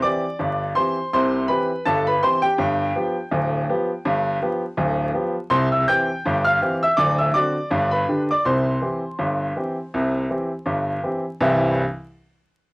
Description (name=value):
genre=ragtime piano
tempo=82 BPM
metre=2/4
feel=swing 56% on 16ths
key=C major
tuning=A4 = 440 Hz
part: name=clear baby grand piano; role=solo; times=0.0-11.8 s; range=D1 to G6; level=-19 LUFS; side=equal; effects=cassette tape
room=light reverb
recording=home recording on cassette, vinyl crackle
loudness=-19 LUFS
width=side -30 dB against mid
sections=0.0-11.4 A section; 11.4-12.7 B section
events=none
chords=0.0 C; 2.6 G7; 5.5 C; 7.0 D7; 7.7 G; 8.4 C